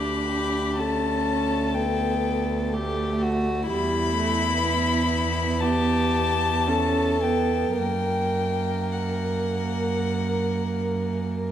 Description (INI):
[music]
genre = classical, slow romantic movement for string quartet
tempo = 51-64 BPM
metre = 4/4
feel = rubato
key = unclear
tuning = A4 = 440 Hz
[part]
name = warm violin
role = melody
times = 0.0-11.2 s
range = F#5 to B5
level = -28 LUFS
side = left 7 dB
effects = none
[part]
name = warm violin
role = second line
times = 0.0-11.5 s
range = E4 to A#4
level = -28 LUFS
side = left 1 dB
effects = none
[part]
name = dark viola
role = accompaniment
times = 0.0-11.5 s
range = G3 to D4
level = -28 LUFS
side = right 3 dB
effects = none
[part]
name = rich cello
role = bass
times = 0.0-11.5 s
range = D2 to F#2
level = -27 LUFS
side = right 2 dB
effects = none
[sound]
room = wet recital hall reverb, RT60 1.9 s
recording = none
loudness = -22 LUFS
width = side -10 dB against mid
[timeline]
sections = 0.0-11.5 A section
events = none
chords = 0.0 G/D; 3.7 Em; 7.8 F#